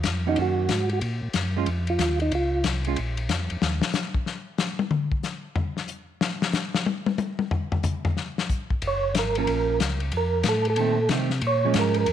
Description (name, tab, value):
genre	soul jazz organ trio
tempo	185 BPM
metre	4/4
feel	swing 64% on 8ths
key	Bb minor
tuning	A4 = 440 Hz
part	mellow tonewheel organ	bass	0.0-3.8, 8.8-12.1 s	Gb1 to C3	-26 LUFS	equal	slow rotary speaker
part	warm soul drum kit	drums	0.0-12.1 s	hi-hat, kick drum, ride cymbal, snare drum, toms	-26 LUFS	left 4 dB	none
part	percussive tonewheel organ	melody	0.3-2.6, 8.9-12.1 s	Eb4 to Db5	-25 LUFS	right 3 dB	slow rotary speaker, chorus vibrato
part	hollow-body jazz guitar	accompaniment	0.3-3.0, 9.4-12.1 s	Eb3 to Gb4	-28 LUFS	right 13 dB	none
room	moderate echo chamber reverb, RT60 1.3 s, small room ambience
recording	1960s-style stereo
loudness	-23 LUFS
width	side -10 dB against mid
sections	0.0-12.1 A section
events	tonewheel organ solo 0.0-12.1; drum solo 3.6-8.8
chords	0.0 Ebm7; 1.0 Bbm; 3.6 N.C.; 8.8 Gbmaj7; 10.1 F7; 11.4 Bbm7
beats	0.05 0.38 0.70 | 1.02 1.35 1.68 2.00 | 2.33 2.65 2.98 3.30 | 3.62 3.95 4.28 4.60 | 4.92 5.25 5.58 5.90 | 6.22 6.55 6.88 7.20 | 7.53 7.85 8.18 8.50 | 8.83 9.15 9.48 9.80 | 10.13 10.45 10.78 11.10 | 11.43 11.75 12.08